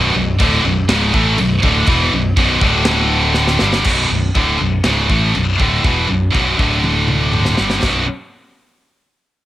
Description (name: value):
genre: heavy metal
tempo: 121 BPM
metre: 4/4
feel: straight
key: B minor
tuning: A4 = 439 Hz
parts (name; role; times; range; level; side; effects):
- heavy high-gain guitar; riff; 0.0-8.0 s; B1 to A3; -19 LUFS; left 6 dB; distortion, cassette tape
- scooped high-gain guitar; riff; 0.0-8.0 s; B1 to A3; -16 LUFS; right 4 dB; distortion, cassette tape
- growling fingered electric bass; bass; 0.0-8.1 s; B0 to A1; -20 LUFS; equal; overdrive
- modern studio drum kit; drums; 0.4-7.9 s; china cymbal, crash cymbal, kick drum, snare drum, toms; -20 LUFS; equal; cassette tape
room: light reverb, small room ambience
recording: home recording on cassette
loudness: -12 LUFS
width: side -14 dB against mid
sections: 0.0-3.9 A section; 3.9-7.8 B section; 7.8-9.4 C section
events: drum fill 3.4-3.9, 6.8-7.8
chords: 0.0 Bm; 2.6 D5; 3.6 G5; 3.9 Bm; 6.6 D5; 7.6 G5; 7.8 B5